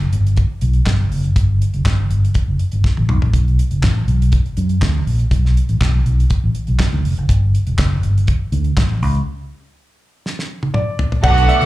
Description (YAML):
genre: disco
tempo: 122 BPM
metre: 4/4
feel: straight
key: unclear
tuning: A4 = 441 Hz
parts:
  - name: fingered electric bass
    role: bass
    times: 0.0-11.7 s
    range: E1 to F#2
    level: -15 LUFS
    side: equal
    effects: none
  - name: damped 70s drum kit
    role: drums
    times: 0.0-11.7 s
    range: crash cymbal, handclaps, hi-hat, kick drum, snare drum, toms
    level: -18 LUFS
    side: equal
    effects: none
  - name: warm grand piano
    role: melody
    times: 10.7-11.7 s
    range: D5 to F#5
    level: -20 LUFS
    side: right 2 dB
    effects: slapback echo
  - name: warm studio violin section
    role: second line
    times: 11.2-11.7 s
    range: F#4 to F#5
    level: -16 LUFS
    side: right 4 dB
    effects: slapback echo
  - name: electric guitar at the edge of break-up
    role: accompaniment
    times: 11.2-11.7 s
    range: F#4 to D5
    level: -23 LUFS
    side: right 7 dB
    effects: wah, spring reverb, slapback echo
  - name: clear studio string section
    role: sustained chords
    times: 11.2-11.7 s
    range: D3 to A4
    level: -22 LUFS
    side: left 1 dB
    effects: none
room: small room ambience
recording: live gig heard through the venue's PA, club reverb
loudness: -14 LUFS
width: side -16 dB against mid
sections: 0.0-11.2 A section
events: drum fill 2.8-3.3, 10.3-11.2; break 9.3-11.2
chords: 0.0 N.C.; 7.3 Gsus2; 9.3 N.C.